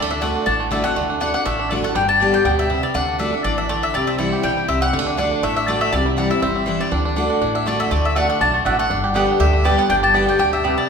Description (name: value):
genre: bluegrass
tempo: 242 BPM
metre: 4/4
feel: swing 54% on 8ths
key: D mixolydian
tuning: A4 = 439 Hz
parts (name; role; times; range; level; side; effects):
- bluegrass banjo; melody; 0.0-10.9 s; G3 to G4; -24 LUFS; right 3 dB; none
- mandolin; melody; 0.0-10.9 s; D5 to A5; -21 LUFS; left 3 dB; none
- picked steel-string acoustic guitar; accompaniment; 0.0-10.9 s; G2 to G4; -21 LUFS; left 1 dB; none
- upright bass; bass; 0.0-10.7 s; G1 to D2; -25 LUFS; equal; none
- mandolin; stabs; 8.2-10.7 s; A3 to G5; -23 LUFS; right 5 dB; none
room: wet recital hall reverb, RT60 1.4 s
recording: recorded in a church or concert hall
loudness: -16 LUFS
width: side -6 dB against mid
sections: 0.0-10.9 A section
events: none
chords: 0.0 D; 2.0 G; 2.9 D; 3.9 C; 4.9 D; 5.9 C; 6.9 D; 8.9 G